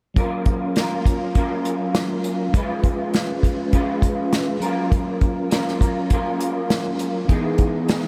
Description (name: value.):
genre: indie pop, bedroom pop.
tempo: 101 BPM.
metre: 4/4.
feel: straight.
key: F# major.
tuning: A4 = 441 Hz.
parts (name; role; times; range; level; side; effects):
mellow tonewheel organ; accompaniment; 0.1-8.1 s; E3 to B4; -27 LUFS; equal; chorus vibrato, stopped rotary speaker, cassette tape.
electric guitar through a small old amp; accompaniment; 0.2-8.1 s; C#3 to B4; -28 LUFS; equal; ensemble chorus, warbly pitch drift.
unplugged drum kit; drums; 0.2-8.1 s; hi-hat, kick drum, snare drum; -23 LUFS; equal; none.
room: moderate huge ambient reverb, RT60 7.3 s.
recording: dreamy mix soaked in reverb.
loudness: -21 LUFS.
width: mono.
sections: 0.2-8.1 A section.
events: none.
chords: 0.2 F#maj7; 2.5 C#7; 4.6 F#maj7; 7.3 Emaj7.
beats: | 0.16 0.76 1.35 1.95 | 2.54 3.13 3.73 4.32 | 4.92 5.51 6.11 6.70 | 7.30 7.89.